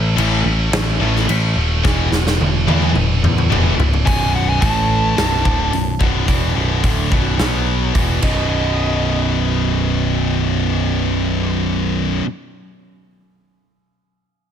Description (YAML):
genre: hard rock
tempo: 108 BPM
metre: 4/4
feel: straight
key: B mixolydian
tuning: A4 = 440 Hz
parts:
  - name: heavy high-gain guitar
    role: riff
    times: 0.0-4.0 s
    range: E2 to A3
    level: -22 LUFS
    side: right 1 dB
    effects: distortion
  - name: modern bright picked electric bass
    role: bass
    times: 0.0-12.2 s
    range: B0 to E2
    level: -19 LUFS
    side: equal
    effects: none
  - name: heavy high-gain guitar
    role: riff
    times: 0.2-12.2 s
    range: B1 to B3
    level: -22 LUFS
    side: left 14 dB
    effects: distortion
  - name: high-gain distorted guitar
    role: riff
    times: 0.2-12.2 s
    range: B1 to B3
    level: -23 LUFS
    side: right 13 dB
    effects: distortion
  - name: big rock drum kit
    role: drums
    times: 0.2-8.4 s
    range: crash cymbal, hi-hat, kick drum, snare drum, toms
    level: -20 LUFS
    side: equal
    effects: none
  - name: dark smooth lead guitar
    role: melody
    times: 4.1-11.5 s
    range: D#5 to A5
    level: -24 LUFS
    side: right 1 dB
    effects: overdrive, slapback echo
room: small room ambience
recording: none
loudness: -14 LUFS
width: side -9 dB against mid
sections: 0.0-4.1 A section; 4.1-8.5 B section; 8.5-10.7 C section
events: drum fill 1.8-4.1, 8.2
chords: 0.0 A5; 1.8 E5; 4.1 B5; 4.6 A5; 5.2 B5; 7.9 E5; 8.2 B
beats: 0.18 0.73 1.28 | 1.84 2.39 2.95 3.50 | 4.05 4.61 5.16 5.72 | 6.27 6.83 7.39 7.94 | 8.50 9.06 9.62 10.18